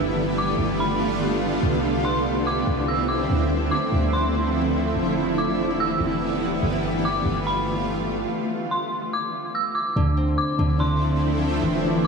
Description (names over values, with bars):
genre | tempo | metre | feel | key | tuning
hip hop | 144 BPM | 4/4 | half-time | D dorian | A4 = 440 Hz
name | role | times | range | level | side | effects
shimmering ambient pad | sustained chords | 0.0-12.1 s | D3 to G4 | -23 LUFS | right 1 dB | chorus, built-in reverb
warm 808-style bass | bass | 0.0-12.1 s | E1 to D2 | -27 LUFS | equal | none
dark detuned synth bell | melody | 0.4-12.1 s | B5 to E6 | -28 LUFS | equal | chorus, digital delay
concert harp | arpeggios | 10.0-12.1 s | D3 to D4 | -23 LUFS | equal | digital delay
room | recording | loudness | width
moderate huge ambient reverb, RT60 3.7 s | small room ambience | -20 LUFS | side -5 dB against mid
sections
0.0-10.0 A section; 10.0-12.1 B section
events
stop 8.3-10.0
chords
0.0 G9; 1.6 Cmaj9; 3.3 Dm9; 5.0 Em7; 6.6 G9; 8.3 N.C.; 10.0 Dm9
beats
0.38 0.80 1.21 | 1.63 2.05 2.46 2.88 | 3.30 3.71 4.13 4.55 | 4.96 5.38 5.80 6.21 | 6.63 7.05 7.46 7.88 | 8.30 8.71 9.13 9.55 | 9.96 10.38 10.80 11.21 | 11.63 12.05